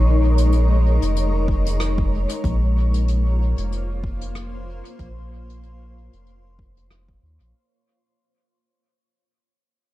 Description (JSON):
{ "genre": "ambient dub", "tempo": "94 BPM", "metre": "4/4", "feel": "swing 56% on 16ths", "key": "Bb minor", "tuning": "A4 = 440 Hz", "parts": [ { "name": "granular cloud pad", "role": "sustained chords", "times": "0.0-7.5 s", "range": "Ab3 to Db5", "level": "-26 LUFS", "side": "left 1 dB", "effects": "built-in reverb" }, { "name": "warm sub bass", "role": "bass", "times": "0.0-7.5 s", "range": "F1 to Eb2", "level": "-20 LUFS", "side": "equal", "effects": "tube saturation" }, { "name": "soft brush drum kit", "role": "drums", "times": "0.4-7.5 s", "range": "hi-hat, rim click", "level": "-35 LUFS", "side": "left 2 dB", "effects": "low-pass filter on hats, low-pass filter on snare, low-pass filter on room, dub echo" }, { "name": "electronic kick drum", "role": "drums", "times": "1.5-7.2 s", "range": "none", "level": "-25 LUFS", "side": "equal", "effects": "overdrive" } ], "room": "small room ambience", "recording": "echo-heavy mix", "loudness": "-18 LUFS", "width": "side -16 dB against mid", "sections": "0.0-7.5 A section", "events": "fade-out 0.0-7.5", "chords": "0.0 Absus4; 2.4 Bbm", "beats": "0.52 1.16 1.80 | 2.44 3.08 3.71 4.35 | 4.99 5.63 6.27 6.91" }